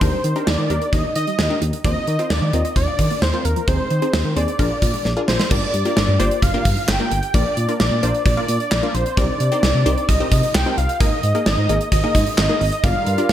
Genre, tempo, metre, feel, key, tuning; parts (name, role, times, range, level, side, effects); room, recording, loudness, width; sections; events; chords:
synth-pop; 131 BPM; 4/4; straight; A4 = 438 Hz
wide unison lead; melody; 0.0-13.3 s; Bb4 to G5; -22 LUFS; equal; tape echo
wide unison pluck; accompaniment; 0.0-13.3 s; Bb3 to F5; -26 LUFS; left 2 dB
resonant blip pluck; arpeggios; 0.0-5.5 s; Eb3 to F5; -31 LUFS; right 1 dB
smooth synth bass; bass; 0.0-13.3 s; G1 to Eb3; -21 LUFS; equal
gated 80s drum kit; drums; 0.0-13.3 s; crash cymbal, handclaps, hi-hat, kick drum, snare drum; -20 LUFS; equal
warm analog pad; sustained chords; 12.8-13.3 s; G3 to Bb4; -24 LUFS; right 2 dB; chorus
light reverb, small room ambience; echo-heavy mix; -16 LUFS; side -11 dB against mid
0.0-5.5 A section; 5.5-13.3 B section
drum fill 5.1-5.5
0.0 Ebmaj7; 1.8 Bbsus2/Eb; 3.7 Ab/Eb; 4.6 Bb7; 5.5 Gm7; 7.3 Bb; 9.2 Cm7; 11.0 Absus2